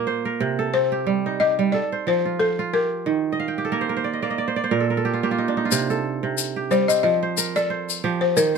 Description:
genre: west african traditional, West African string and xylophone music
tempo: 90 BPM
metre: 4/4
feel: swing 56% on 16ths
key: C dorian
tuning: A4 = 440 Hz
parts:
  - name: kora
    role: arpeggios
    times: 0.0-8.6 s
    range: Bb2 to G5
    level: -22 LUFS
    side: right 6 dB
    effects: none
  - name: balafon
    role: melody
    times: 0.7-8.6 s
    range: A4 to Eb5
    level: -21 LUFS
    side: left 5 dB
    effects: slapback echo, plate reverb
  - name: tube shaker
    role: percussion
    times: 5.7-8.6 s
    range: none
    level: -26 LUFS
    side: left 10 dB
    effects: none
room: light reverb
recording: none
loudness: -20 LUFS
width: side -5 dB against mid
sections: 0.0-5.7 A section; 5.7-8.6 B section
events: kora fill 3.3-5.7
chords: 0.4 Cm; 1.7 F; 3.1 Eb; 4.4 N.C.; 5.7 C5; 7.0 F

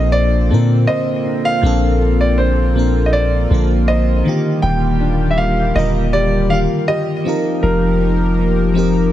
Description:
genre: contemporary R&B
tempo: 80 BPM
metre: 4/4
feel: swing 54% on 16ths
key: Bb major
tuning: A4 = 438 Hz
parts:
  - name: clear concert grand piano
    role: melody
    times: 0.0-8.3 s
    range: Bb4 to G5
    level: -20 LUFS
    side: right 1 dB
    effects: ping-pong delay
  - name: FM electric piano with soft pad layer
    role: accompaniment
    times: 0.0-9.1 s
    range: Bb2 to Bb4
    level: -19 LUFS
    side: equal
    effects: chorus
  - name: chorused pulse-width pad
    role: sustained chords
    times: 0.0-9.1 s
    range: F3 to Bb4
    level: -23 LUFS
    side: right 2 dB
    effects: none
  - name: nylon-string guitar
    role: arpeggios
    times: 0.0-9.1 s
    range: Eb3 to C5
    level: -23 LUFS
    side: left 5 dB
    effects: none
  - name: long sustained 808-style bass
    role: bass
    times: 0.0-9.1 s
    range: Eb1 to Bb2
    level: -16 LUFS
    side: equal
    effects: none
room: light reverb, small room ambience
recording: none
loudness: -13 LUFS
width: side -12 dB against mid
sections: 0.0-9.1 A section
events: none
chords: 0.0 Bbmaj9; 4.3 Ebmaj7; 7.3 F9sus4

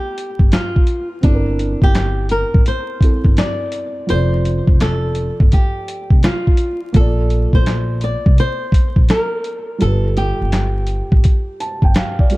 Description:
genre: lo-fi hip hop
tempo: 84 BPM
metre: 4/4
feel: swing 65% on 16ths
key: F major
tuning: A4 = 438 Hz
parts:
  - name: flamenco guitar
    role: melody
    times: 0.0-12.3 s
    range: D4 to D5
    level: -22 LUFS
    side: equal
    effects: none
  - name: felt-muted upright piano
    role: accompaniment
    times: 0.0-12.4 s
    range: F3 to A5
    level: -24 LUFS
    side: right 2 dB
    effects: cassette tape
  - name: dusty soul sampler-style drum kit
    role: drums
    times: 0.2-12.4 s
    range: handclaps, hi-hat, kick drum, snare drum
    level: -13 LUFS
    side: equal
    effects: vintage 12-bit sampler grit
  - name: upright bass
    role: bass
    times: 0.4-11.9 s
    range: F1 to C2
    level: -18 LUFS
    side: equal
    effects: none
room: small room ambience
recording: dark, warm production, vinyl crackle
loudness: -13 LUFS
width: side -20 dB against mid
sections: 0.0-12.4 A section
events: felt piano fill 11.2-12.4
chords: 0.0 G9; 1.2 C9/G; 4.1 F6; 7.0 Bb; 9.8 G9

